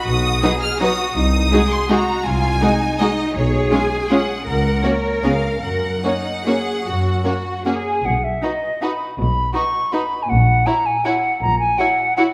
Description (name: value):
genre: classical, orchestral ballroom waltz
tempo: 138-175 BPM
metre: 3/4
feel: rubato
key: F# major, B major from 8.1 s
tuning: A4 = 440 Hz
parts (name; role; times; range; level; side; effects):
- clear symphonic violin section; melody; 0.0-12.2 s; B4 to E#6; -28 LUFS; equal; none
- rich symphonic cello section; bass; 0.0-11.7 s; A#2 to A#4; -26 LUFS; equal; none
- rich studio double bass section; bass; 0.1-11.7 s; A#1 to F#2; -24 LUFS; equal; none
- warm symphonic violin section; second line; 0.4-12.3 s; E#4 to C#5; -29 LUFS; equal; none
- clear symphonic viola section; accompaniment; 0.4-12.3 s; F#3 to E4; -25 LUFS; equal; none
- silver concert flute; second line; 7.9-12.2 s; D#5 to C#6; -21 LUFS; equal; none
room: moderate scoring stage reverb, RT60 1.7 s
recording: none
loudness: -19 LUFS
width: mono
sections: 0.0-8.1 A section; 8.1-12.3 B section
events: none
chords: 0.0 B; 1.2 G#7/B#; 3.4 C#7(no3)/B; 4.5 F#/C#; 5.2 C#7; 5.6 F#; 8.1 B; 10.3 F#7/A#